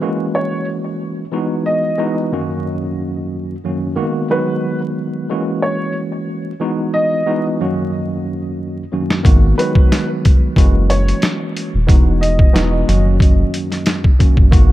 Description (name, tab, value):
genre	hip hop, boom-bap hip-hop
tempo	91 BPM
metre	4/4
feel	swing 54% on 16ths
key	unclear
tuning	A4 = 440 Hz
part	tine electric piano	accompaniment	0.0-14.7 s	F#2 to F#4	-19 LUFS	equal	overdrive, fast stereo tremolo, cassette tape, high-pass filter, low-pass filter
part	dark upright piano	melody	0.3-12.7 s	B4 to D#5	-22 LUFS	equal	high-pass filter, low-pass filter, tape echo
part	boom bap sampler-style drum kit	drums	9.1-14.7 s	hi-hat, kick drum, snare drum	-12 LUFS	equal	none
part	soft dub sub bass	bass	9.3-14.7 s	D#1 to G#1	-14 LUFS	equal	none
room	little or no reverb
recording	dark, warm production, vinyl crackle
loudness	-14 LUFS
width	side -15 dB against mid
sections	0.0-14.7 A section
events	drum fill 7.9-9.2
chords	0.0 F#7; 1.3 Emaj9; 2.3 D#m7/F#; 4.0 G#m7; 5.3 F#7; 6.6 Emaj9; 7.6 D#m7/F#; 9.2 G#m7; 10.6 F#7; 11.9 Emaj9; 12.9 D#m7/F#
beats	0.02 0.68 | 1.34 2.00 2.65 3.31 | 3.97 4.63 5.29 5.95 | 6.61 7.27 7.93 8.59 | 9.25 9.91 10.57 11.23 | 11.88 12.54 13.20 13.86 | 14.52